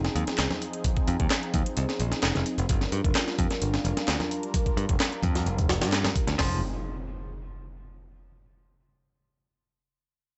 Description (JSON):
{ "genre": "breakbeat, breaks", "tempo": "130 BPM", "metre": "4/4", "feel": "straight", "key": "F dorian", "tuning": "A4 = 440 Hz", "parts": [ { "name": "phased analog pad", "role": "sustained chords", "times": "0.0-6.6 s", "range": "F3 to Bb4", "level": "-36 LUFS", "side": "equal", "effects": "phaser, chorus, vintage 12-bit sampler grit, sidechain pumping" }, { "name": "modern bright picked electric bass", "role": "bass", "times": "0.0-6.6 s", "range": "F1 to G2", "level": "-30 LUFS", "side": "equal", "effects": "low-pass filter" }, { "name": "breakbeat sampler-style drum kit", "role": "drums", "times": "0.0-6.5 s", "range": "hi-hat, kick drum, snare drum", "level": "-29 LUFS", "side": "equal", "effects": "none" }, { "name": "house drum kit", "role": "drums", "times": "0.0-6.4 s", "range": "handclaps, hi-hat", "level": "-36 LUFS", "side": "equal", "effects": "overdrive" }, { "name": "congas", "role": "percussion", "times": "0.2-6.1 s", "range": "none", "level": "-40 LUFS", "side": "equal", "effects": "none" }, { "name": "semi-hollow electric guitar", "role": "riff", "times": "6.4-6.6 s", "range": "F3", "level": "-38 LUFS", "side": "equal", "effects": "vintage 12-bit sampler grit, tape echo" }, { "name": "impact", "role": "sound effects", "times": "6.4-8.2 s", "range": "none", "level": "-40 LUFS", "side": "equal", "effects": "none" } ], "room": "little or no reverb", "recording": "nothing above 8.0 kHz", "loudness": "-27 LUFS", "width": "mono", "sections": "0.0-6.4 A section; 6.4-8.2 B section", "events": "none", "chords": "0.0 Fm7; 2.7 Gm7; 6.4 Fm7" }